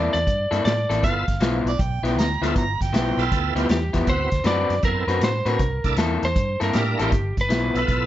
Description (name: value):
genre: electric blues shuffle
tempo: 158 BPM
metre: 4/4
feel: swing 66% on 8ths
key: G mixolydian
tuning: A4 = 440 Hz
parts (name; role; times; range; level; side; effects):
- lightly driven lead guitar; melody; 0.0-8.1 s; G4 to F5; -25 LUFS; equal; none
- electric guitar through a small old amp; riff; 0.0-7.8 s; G2 to B4; -25 LUFS; left 3 dB; warbly pitch drift
- vintage muted fingered electric bass; bass; 0.0-8.1 s; G1 to A2; -25 LUFS; equal; none
- vintage drum kit; drums; 0.1-8.0 s; hi-hat, kick drum, snare drum; -26 LUFS; equal; none
- bright tonewheel organ; accompaniment; 1.0-8.1 s; Bb3 to Bb4; -27 LUFS; right 4 dB; overdrive, chorus vibrato, slow rotary speaker
- overdriven harmonica; second line; 1.7-3.6 s; D5 to Bb5; -29 LUFS; right 6 dB; tape echo
room: light reverb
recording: nothing above 7.7 kHz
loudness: -19 LUFS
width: side -13 dB against mid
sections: 0.0-8.1 A section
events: none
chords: 0.0 C13; 1.0 G13; 4.1 D13; 5.6 C13; 7.1 G13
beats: 0.27 0.65 | 1.03 1.41 1.79 2.17 | 2.55 2.93 3.31 3.69 | 4.07 4.46 4.83 5.22 | 5.60 5.98 6.36 6.74 | 7.12 7.50 7.88